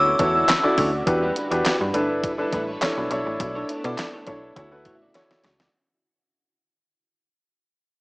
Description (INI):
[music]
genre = early-eighties boogie funk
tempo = 103 BPM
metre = 4/4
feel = straight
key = D major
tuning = A4 = 440 Hz
[part]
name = synth chime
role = melody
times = 0.0-0.7 s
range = E6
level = -21 LUFS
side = equal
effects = ensemble chorus, tremolo, cassette tape, analog delay
[part]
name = warm baby grand piano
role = accompaniment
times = 0.0-5.7 s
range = D4 to A5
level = -24 LUFS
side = equal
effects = cassette tape
[part]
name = soft string machine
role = sustained chords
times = 0.0-5.7 s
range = C#3 to B4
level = -33 LUFS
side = equal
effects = ensemble chorus, cassette tape
[part]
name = slap-like FM bass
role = bass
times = 0.0-5.7 s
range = G1 to B2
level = -29 LUFS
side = equal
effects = none
[part]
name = electric guitar at the edge of break-up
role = riff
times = 0.1-5.7 s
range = G3 to D5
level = -32 LUFS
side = right 1 dB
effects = wide subtle chorus, cassette tape
[part]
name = detuned 8-bit digital drum machine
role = drums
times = 0.2-5.7 s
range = handclaps, hi-hat, kick drum, snare drum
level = -25 LUFS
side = equal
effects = none
[sound]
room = light reverb, digital ambience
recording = home recording on cassette, small speaker sound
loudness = -20 LUFS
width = side -31 dB against mid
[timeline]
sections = 0.0-1.1 A section; 1.1-5.7 B section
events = fade-out 1.1-5.7; grand piano fill 4.0-5.7; drum fill 5.1-5.7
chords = 0.0 Dmaj9; 1.1 Em9; 1.9 G69; 3.1 Bm11; 4.6 Dmaj9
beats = 0.49 | 1.07 1.65 2.23 2.82 | 3.40 3.98 4.56 5.15